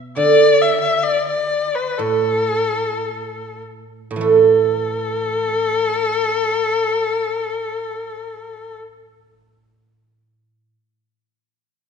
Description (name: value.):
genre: chinese traditional, Chinese chamber ensemble.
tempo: 47-69 BPM.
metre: 2/4.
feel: straight.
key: unclear.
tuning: A4 = 444 Hz.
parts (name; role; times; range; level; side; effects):
guzheng; accompaniment; 0.0-10.8 s; A2 to A3; -17 LUFS; right 6 dB; none.
warm erhu; melody; 0.2-8.8 s; A4 to E5; -19 LUFS; left 4 dB; none.
room: wet scoring stage reverb, RT60 1.5 s.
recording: nothing above 10.6 kHz.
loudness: -15 LUFS.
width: side -6 dB against mid.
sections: 0.0-4.2 A section; 4.2-9.2 B section.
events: slowing down 0.2-4.2.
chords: none.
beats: | 0.19 1.08 | 2.02 3.06 | 4.24 5.49 | 6.73 7.98.